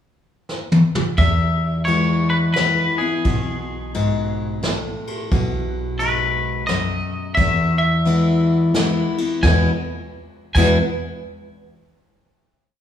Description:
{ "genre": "honky-tonk and classic country", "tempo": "87 BPM", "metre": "3/4", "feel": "swing 64% on 8ths", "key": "E major", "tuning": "A4 = 440 Hz", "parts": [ { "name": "vintage brush drum kit", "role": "drums", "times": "0.5-10.7 s", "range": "crash cymbal, kick drum, ride cymbal, snare drum, toms", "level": "-22 LUFS", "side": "equal", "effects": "none" }, { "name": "twangy electric guitar", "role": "melody", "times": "1.2-10.8 s", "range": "G#4 to G#5", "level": "-22 LUFS", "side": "left 1 dB", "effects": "none" }, { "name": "picked steel-string acoustic guitar", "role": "accompaniment", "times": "1.2-10.8 s", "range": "E2 to E4", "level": "-21 LUFS", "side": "left 2 dB", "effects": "none" }, { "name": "upright bass", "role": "bass", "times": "1.2-10.8 s", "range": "B1 to E2", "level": "-23 LUFS", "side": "equal", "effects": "none" } ], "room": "wet recital hall reverb, RT60 1.5 s", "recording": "recorded in a church or concert hall, small room ambience", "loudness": "-17 LUFS", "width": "side -9 dB against mid", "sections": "0.0-1.2 pickup bar; 1.2-9.4 A section; 9.4-11.5 final chord", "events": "drum fill 0.5-1.2", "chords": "0.0 N.C.; 1.2 E; 5.3 B; 7.4 E", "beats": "0.49 | 1.18 1.87 2.56 | 3.25 3.94 4.63 | 5.31 6.00 6.69 | 7.37 8.06 8.75 | 9.43 10.12" }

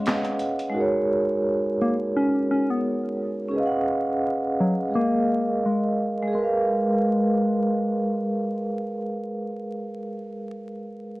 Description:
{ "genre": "lo-fi hip hop", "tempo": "86 BPM", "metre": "4/4", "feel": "swing 56% on 16ths", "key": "G# dorian", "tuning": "A4 = 441 Hz", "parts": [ { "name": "soft struck synth lead", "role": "melody", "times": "0.0-9.9 s", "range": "F#3 to C#4", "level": "-25 LUFS", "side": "left 1 dB", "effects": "chorus, low-pass filter" }, { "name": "vibraphone with soft mallets", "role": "accompaniment", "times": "0.0-11.2 s", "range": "G#3 to F#5", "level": "-24 LUFS", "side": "right 1 dB", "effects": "cassette tape, low-pass filter, plate reverb" }, { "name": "boom bap sampler-style drum kit", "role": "drums", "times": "0.1-0.7 s", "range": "handclaps, hi-hat, snare drum", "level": "-27 LUFS", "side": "equal", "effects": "none" } ], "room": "moderate studio reverb, RT60 0.5 s", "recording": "worn, warbling old tape, cassette tape, vinyl crackle, warbly pitch drift", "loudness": "-22 LUFS", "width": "side -19 dB against mid", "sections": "0.0-6.3 A section; 6.3-9.1 B section", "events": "none", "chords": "0.0 C#9sus4; 0.7 G#9sus4; 3.5 C#9sus4; 4.9 G#sus2; 6.3 G#m69", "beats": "0.04 | 0.74 1.44 2.14 2.84 | 3.53 4.23 4.93 5.63 | 6.32 7.02 7.72 8.42" }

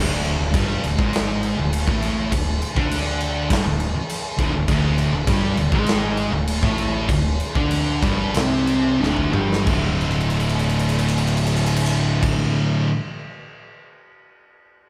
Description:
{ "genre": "stoner and doom metal", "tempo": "88-102 BPM", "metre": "4/4", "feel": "straight", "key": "D minor", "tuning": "A4 = 440 Hz", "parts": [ { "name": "thick fuzz guitar", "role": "riff", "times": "0.0-12.9 s", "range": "D2 to D4", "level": "-28 LUFS", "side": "equal", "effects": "distortion" }, { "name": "thick fuzz guitar", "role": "riff", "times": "0.0-12.9 s", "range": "D2 to F4", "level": "-28 LUFS", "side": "equal", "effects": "distortion" }, { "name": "fuzz fingered electric bass", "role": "bass", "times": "0.0-12.3 s", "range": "D1 to D2", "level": "-30 LUFS", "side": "equal", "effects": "overdrive" }, { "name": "big rock drum kit", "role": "drums", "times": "0.2-13.9 s", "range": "crash cymbal, kick drum, ride cymbal, snare drum, toms", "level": "-26 LUFS", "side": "equal", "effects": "none" }, { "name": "thick fuzz guitar", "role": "riff", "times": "4.7-12.9 s", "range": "D2 to D4", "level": "-26 LUFS", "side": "equal", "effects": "distortion" } ], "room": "moderate large studio reverb, RT60 1.4 s", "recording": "band playing live in one room", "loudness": "-21 LUFS", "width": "mono", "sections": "0.0-9.7 A section; 9.7-12.4 B section", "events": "slowing down 4.7-9.7; drum fill 9.0-9.7, 10.0-12.2", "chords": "0.0 D5; 9.7 Dm", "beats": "0.54 1.14 1.73 | 2.32 2.91 3.50 4.09 | 4.69 5.28 5.87 6.48 | 7.09 7.71 8.35 9.00 | 9.67 10.36 11.04 11.72" }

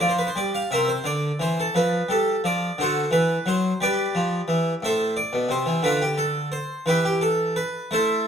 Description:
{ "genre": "classical, baroque-style suite movement for harpsichord", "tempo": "58 BPM (dotted quarters)", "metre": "6/8", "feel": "rubato", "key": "unclear", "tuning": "A4 = 441 Hz", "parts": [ { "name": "harpsichord", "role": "solo", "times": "0.0-8.3 s", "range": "A2 to F5", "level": "-20 LUFS", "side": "equal", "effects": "none" } ], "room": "moderate large studio reverb, RT60 1.2 s", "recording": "none", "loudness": "-21 LUFS", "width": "side -7 dB against mid", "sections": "0.0-8.3 A section", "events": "none", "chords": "0.0 N.C.; 0.7 C7; 1.8 F69; 2.8 D; 3.8 G; 4.8 Amadd11; 5.8 Dm7; 6.9 Em", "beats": "| 0.73 1.77 | 2.80 3.82 | 4.83 5.84 | 6.87 7.90" }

